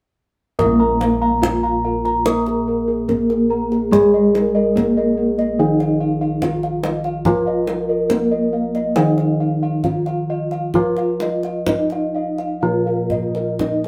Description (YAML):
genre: Javanese gamelan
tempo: 71 BPM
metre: 4/4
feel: uneven beats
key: unclear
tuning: A4 = 440 Hz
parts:
  - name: gamelan-type bronze metallophone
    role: melody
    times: 0.6-13.9 s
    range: Ab3-25c to Bb4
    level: -23 LUFS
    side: equal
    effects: none
  - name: gamelan-type bronze metallophone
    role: accompaniment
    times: 0.6-13.9 s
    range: Eb3 to Bb3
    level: -25 LUFS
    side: equal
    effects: none
  - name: gamelan-type bronze metallophone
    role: arpeggios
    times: 0.6-13.9 s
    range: Ab4-25c to Bb5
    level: -28 LUFS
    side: equal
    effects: none
  - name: gamelan-type bossed gongs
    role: bass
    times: 0.6-13.9 s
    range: Bb1 to Bb4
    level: -25 LUFS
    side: equal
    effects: none
  - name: kendang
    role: percussion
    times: 0.6-13.9 s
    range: none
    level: -28 LUFS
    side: equal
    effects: none
  - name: gamelan-type bossed gongs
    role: arpeggios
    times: 0.8-13.9 s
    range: Ab4-25c to Bb5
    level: -27 LUFS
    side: equal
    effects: none
room: moderate studio reverb, RT60 0.7 s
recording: band playing live in one room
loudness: -18 LUFS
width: mono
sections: 0.6-13.9 A section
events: none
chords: none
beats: | 0.59 1.43 2.26 3.09 | 3.92 4.76 5.59 6.42 | 7.26 8.10 8.96 9.85 | 10.75 11.68 12.63 13.61